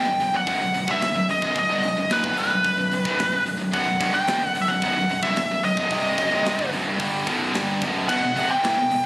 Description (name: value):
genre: heavy metal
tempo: 110 BPM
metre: 4/4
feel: straight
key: unclear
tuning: A4 = 442 Hz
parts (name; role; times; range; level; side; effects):
- nasal lead guitar with a parked wah; melody; 0.0-9.1 s; B4 to G5; -22 LUFS; equal; overdrive
- distorted electric guitar; riff; 0.0-9.0 s; B1 to G3; -30 LUFS; left 2 dB; distortion
- heavy high-gain guitar; riff; 0.0-9.1 s; B1 to G3; -30 LUFS; equal; distortion
- tight distorted guitar; riff; 0.0-9.0 s; B1 to G3; -28 LUFS; right 2 dB; distortion
- growling picked electric bass; bass; 0.0-9.0 s; B0 to A1; -34 LUFS; equal; overdrive
- tight metal drum kit; drums; 0.2-9.0 s; crash cymbal, hi-hat, kick drum, snare drum; -32 LUFS; equal; none
room: light reverb, small room ambience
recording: recorded on a phone in the room, studio reverb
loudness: -20 LUFS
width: side -21 dB against mid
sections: 0.0-9.1 A section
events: none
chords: 0.0 B; 8.1 E5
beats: 0.47 1.01 | 1.56 2.10 2.65 3.19 | 3.73 4.28 4.82 5.37 | 5.91 6.46 7.00 7.55 | 8.09 8.64